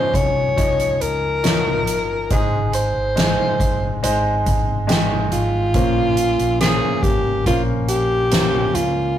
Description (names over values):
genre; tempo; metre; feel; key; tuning
pop ballad; 70 BPM; 4/4; straight; unclear; A4 = 440 Hz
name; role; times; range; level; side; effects
breathy alto saxophone; melody; 0.0-9.2 s; F4 to Db5; -20 LUFS; equal; none
clear baby grand piano; accompaniment; 0.0-9.2 s; Ab2 to Db5; -23 LUFS; equal; none
mellow fretless electric bass; bass; 0.1-9.1 s; G1 to Db2; -24 LUFS; equal; none
soft-mallet drum kit; drums; 0.1-8.9 s; hi-hat, kick drum, snare drum; -21 LUFS; equal; none
room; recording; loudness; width
moderate studio reverb, RT60 0.5 s; rough rehearsal-room recording, warm saturation; -16 LUFS; side -11 dB against mid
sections
0.0-9.2 A section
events
none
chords
0.0 Dbadd9; 2.3 Ab; 5.7 Bbmadd9